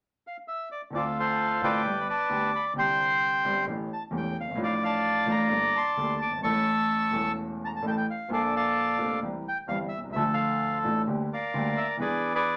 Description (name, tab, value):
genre	tango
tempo	130 BPM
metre	4/4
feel	rubato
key	D minor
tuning	A4 = 440 Hz
part	bandoneon	melody	0.3-12.6 s	F4 to E6	-28 LUFS	equal	none
part	warm grand piano	accompaniment	0.9-12.6 s	E1 to A4	-33 LUFS	equal	none
room	wet studio ambience, RT60 0.5 s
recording	none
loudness	-27 LUFS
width	mono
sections	0.9-12.6 A section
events	none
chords	0.0 N.C.; 0.9 Dm7; 1.8 G; 2.8 Csus2; 3.7 A7; 4.6 Dmadd9/A; 5.5 Gmadd9; 6.4 A; 8.3 Bbmaj7; 9.2 C; 10.1 Dmadd9; 11.1 Gm/D; 12.0 E7